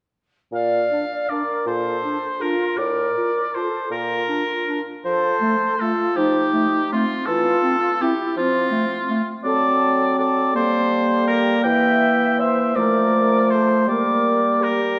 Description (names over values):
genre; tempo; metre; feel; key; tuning
classical, orchestral ballroom waltz; 162 BPM; 3/4; uneven beats, rubato; Bb major; A4 = 441 Hz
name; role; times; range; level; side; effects
mellow small flute group; second line; 0.5-15.0 s; C4 to E5; -27 LUFS; equal; none
warm oboe; second line; 0.5-15.0 s; F4 to G5; -24 LUFS; equal; none
mellow bassoon; accompaniment; 0.5-15.0 s; A2 to G3; -27 LUFS; equal; none
mellow clarinet; second line; 0.9-15.0 s; A3 to F4; -26 LUFS; equal; none
room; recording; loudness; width
wet concert hall reverb, RT60 2.4 s; dark, warm production; -20 LUFS; mono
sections
0.5-15.0 A section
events
none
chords
0.5 Bb; 2.8 F/A; 3.9 Bb; 5.0 F; 7.3 C/E; 8.4 F; 9.4 D7/F#; 10.5 Gm; 11.7 C7/E; 12.8 F; 13.9 Gm